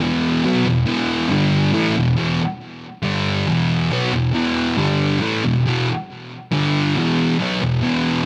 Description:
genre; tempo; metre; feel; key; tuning
rock; 138 BPM; 4/4; straight; E minor; A4 = 441 Hz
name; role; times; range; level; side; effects
thick fuzz guitar; solo; 0.0-8.3 s; E2 to B3; -19 LUFS; equal; distortion
room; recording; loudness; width
moderate studio reverb, RT60 0.7 s; none; -19 LUFS; mono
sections
0.0-8.3 A section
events
none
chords
0.0 E5; 1.3 G5; 1.7 E5; 3.0 G5; 3.5 E5; 4.8 G5; 5.2 E5; 6.5 G5; 7.0 E5

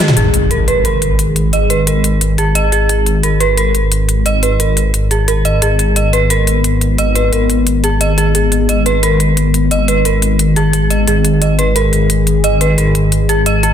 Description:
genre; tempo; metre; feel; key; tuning
dark technical drum and bass; 176 BPM; 4/4; straight; G# minor; A4 = 436 Hz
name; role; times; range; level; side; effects
sweeping resonant pad; sustained chords; 0.0-13.7 s; D#3 to G#4; -19 LUFS; left 3 dB; chorus
dark detuned synth bell; arpeggios; 0.0-13.7 s; G#4 to D#5; -16 LUFS; right 2 dB; chorus, phaser, low-pass filter, tape echo
drum and bass drum kit; drums; 0.0-13.7 s; hi-hat, rim click, toms; -17 LUFS; left 1 dB; none
phased detuned saw bass; bass; 0.2-13.7 s; G#1; -14 LUFS; equal; phaser, tube saturation
impact; sound effects; 0.2-1.5 s; none; -20 LUFS; equal; none
room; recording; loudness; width
light reverb, digital ambience; dense, heavily limited modern master; -10 LUFS; side -9 dB against mid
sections
0.2-13.7 A section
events
break 0.0; drum fill 0.0; impact 0.2-1.5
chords
0.2 G#5

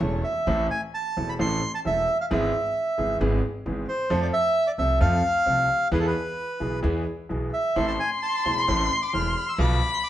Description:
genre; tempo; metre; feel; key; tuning
tango; 132 BPM; 4/4; rubato; A harmonic minor; A4 = 440 Hz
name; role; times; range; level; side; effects
warm violin; second line; 0.0-0.2, 7.8-10.1 s; C#5 to C6; -26 LUFS; left 3 dB; none
bright concert grand piano; accompaniment; 0.0-9.8 s; E1 to A4; -28 LUFS; equal; none
upright bass; bass; 0.0-9.8 s; E1 to F2; -27 LUFS; equal; none
bandoneon; melody; 0.2-10.1 s; A4 to F6; -25 LUFS; right 1 dB; none
room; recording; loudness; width
moderate stone room reverb, RT60 1.0 s; band playing live in one room, nothing above 10.4 kHz; -22 LUFS; side -12 dB against mid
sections
0.5-10.1 A section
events
none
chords
0.5 Am; 2.3 E/G#; 4.1 F; 5.9 E; 7.8 Am; 9.6 Bdim

